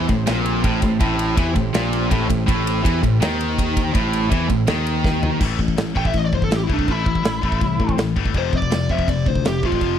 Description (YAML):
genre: heavy metal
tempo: 164 BPM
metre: 4/4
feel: straight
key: A minor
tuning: A4 = 440 Hz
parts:
  - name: warm chamber string section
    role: sustained chords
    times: 0.0-5.4 s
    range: C4 to C5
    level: -34 LUFS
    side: left 2 dB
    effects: none
  - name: cranked stack guitar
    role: riff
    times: 0.0-5.4 s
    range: A2 to E3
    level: -25 LUFS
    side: right 1 dB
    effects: overdrive
  - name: high-gain distorted guitar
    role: riff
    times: 0.0-10.0 s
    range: F2 to A3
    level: -24 LUFS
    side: left 10 dB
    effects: distortion
  - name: scooped high-gain guitar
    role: riff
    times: 0.0-5.4 s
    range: A2 to E3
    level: -25 LUFS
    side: right 9 dB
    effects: distortion
  - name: picked electric bass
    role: bass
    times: 0.0-10.0 s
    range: F1 to A2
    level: -23 LUFS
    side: equal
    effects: none
  - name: big rock drum kit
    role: drums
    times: 0.1-9.9 s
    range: crash cymbal, kick drum, ride cymbal, snare drum, toms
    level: -22 LUFS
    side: equal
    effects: none
  - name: lead guitar through a small cranked amp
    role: melody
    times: 6.0-10.0 s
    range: D4 to G5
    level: -24 LUFS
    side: equal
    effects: overdrive
room: small room reverb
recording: dry, close 1970s-style studio recording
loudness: -17 LUFS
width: side -9 dB against mid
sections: 0.0-5.4 A section; 5.4-10.0 B section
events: half time 0.0-5.4; drum fill 5.0-5.4; lead electric guitar solo 5.4-10.0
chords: 0.0 Am; 5.4 A5; 8.3 F5